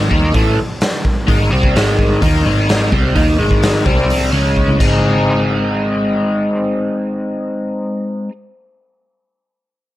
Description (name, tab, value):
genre	psychedelic rock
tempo	128 BPM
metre	4/4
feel	straight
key	G# major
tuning	A4 = 438 Hz
part	overdriven electric guitar	riff	0.0-8.3 s	G#2 to G#4	-16 LUFS	left 1 dB	rotary speaker
part	hollow-body short-scale picked electric bass	bass	0.0-7.9 s	G#1 to D#2	-18 LUFS	equal	none
part	tanpura	drone	0.0-4.6 s	none	barely audible	none	none
part	raw garage drum kit	drums	0.1-4.9 s	crash cymbal, hi-hat, kick drum, snare drum, toms	-16 LUFS	equal	none
room	light reverb, studio reverb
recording	none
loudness	-13 LUFS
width	side -15 dB against mid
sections	0.0-5.0 A section; 5.0-8.8 B section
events	drum fill 4.6-5.0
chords	0.0 G#; 3.9 C5; 4.3 C#5; 4.8 G#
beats	0.34 0.81 | 1.28 1.75 2.22 2.69 | 3.16 3.63 4.10 4.57 | 5.03 5.50 5.97 6.44 | 6.91 7.38 7.84 8.31